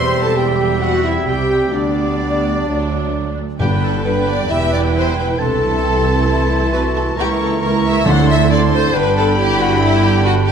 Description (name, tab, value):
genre	quick classical-period movement for symphony orchestra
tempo	135 BPM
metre	4/4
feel	rubato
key	G major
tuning	A4 = 439 Hz
part	warm studio violin section	melody	0.0-10.5 s	D5 to C#6	-27 LUFS	left 1 dB	none
part	mellow clarinet	second line	0.0-10.5 s	A3 to G4	-25 LUFS	left 2 dB	none
part	warm oboe	second line	0.0-10.5 s	D5 to A#5	-25 LUFS	right 2 dB	none
part	warm studio violin section	second line	0.0-10.5 s	E4 to C6	-21 LUFS	left 3 dB	none
part	mellow bassoon	accompaniment	0.0-10.5 s	D3 to G3	-24 LUFS	right 2 dB	none
part	rich studio viola section	accompaniment	0.0-10.5 s	F#3 to B4	-25 LUFS	equal	none
part	warm French horn section	sustained chords	0.0-10.5 s	G3 to C5	-24 LUFS	left 1 dB	none
part	dark trumpet section	stabs	0.0-3.3 s	D4 to C5	-26 LUFS	equal	none
part	rich studio double bass section	bass	0.0-10.5 s	E1 to D2	-20 LUFS	right 4 dB	none
part	warm studio cello section	bass	0.0-10.5 s	C2 to G2	-23 LUFS	right 4 dB	none
part	mellow hollow silver concert flute	second line	0.2-10.4 s	D5 to C#6	-28 LUFS	left 2 dB	none
part	timpani	percussion	3.6-4.2, 8.1-8.7 s	G2 to D3	-20 LUFS	right 2 dB	none
room	moderate scoring stage reverb, RT60 1.8 s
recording	none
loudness	-13 LUFS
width	side -7 dB against mid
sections	0.0-3.6 A section; 3.6-10.5 B section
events	none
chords	0.0 C/E; 1.7 G/D; 2.7 D; 3.6 G; 4.5 Em; 5.4 Am/C; 7.2 C#m6; 8.1 D5; 8.9 G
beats	0.37 0.82 1.27 | 1.73 2.21 2.67 3.14 | 3.60 4.05 4.50 4.94 | 5.39 5.83 6.28 6.73 | 7.17 7.61 8.06 8.50 | 8.94 9.37 9.81 10.24